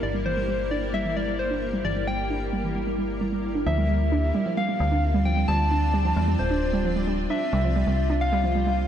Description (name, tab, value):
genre	IDM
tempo	132 BPM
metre	4/4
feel	straight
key	unclear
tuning	A4 = 440 Hz
part	soft struck synth lead	melody	0.0-8.9 s	C5 to A5	-28 LUFS	left 2 dB	chorus, tremolo, tape echo
part	granular cloud pad	sustained chords	0.0-8.9 s	Bb3 to D5	-30 LUFS	left 1 dB	built-in reverb, vintage 12-bit sampler grit
part	metallic FM bass	bass	0.0-8.9 s	D1 to E2	-26 LUFS	equal	none
part	flickering grainy texture	texture	0.0-3.7 s	D5	-47 LUFS	equal	none
part	warbly dusty pluck	arpeggios	0.1-8.7 s	E3 to D4	-28 LUFS	right 4 dB	chorus, tape echo
room	moderate lush hall reverb, RT60 2.6 s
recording	none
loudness	-22 LUFS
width	side -9 dB against mid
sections	0.0-3.7 A section; 3.7-8.9 B section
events	none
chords	0.0 Gm6; 3.7 Dm9; 7.3 C7sus4